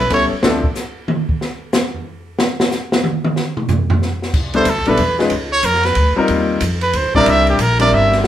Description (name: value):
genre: jazz, small-group swing and bop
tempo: 184 BPM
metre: 3/4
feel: swing 64% on 8ths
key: unclear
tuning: A4 = 441 Hz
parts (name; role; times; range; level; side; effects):
- brilliant trumpet; second line; 0.0-0.3, 4.6-8.2 s; G4 to E5; -16 LUFS; right 2 dB; none
- upright bass; bass; 0.0-0.6, 4.3-8.3 s; G1 to F2; -20 LUFS; equal; none
- warm grand piano; accompaniment; 0.1-0.6, 4.5-8.2 s; F3 to B4; -16 LUFS; left 3 dB; none
- open jazz drum kit; drums; 0.1-8.3 s; crash cymbal, hi-hat, kick drum, ride cymbal, snare drum, toms; -19 LUFS; equal; none
room: moderate large studio reverb, RT60 0.9 s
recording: band playing live in one room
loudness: -14 LUFS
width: side -11 dB against mid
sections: 0.0-4.3 A section; 4.3-8.3 A section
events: trumpet solo 0.0-8.3; drum solo 0.4-4.3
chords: 0.4 Dm7; 1.4 N.C.; 4.3 Cmaj13; 5.3 Db9; 6.3 Eb69; 7.3 C7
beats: 0.11 | 0.44 0.76 1.09 | 1.41 1.74 2.06 | 2.39 2.71 3.04 | 3.36 3.69 4.01 | 4.34 4.67 4.99 | 5.32 5.64 5.97 | 6.29 6.62 6.94 | 7.27 7.59 7.92 | 8.24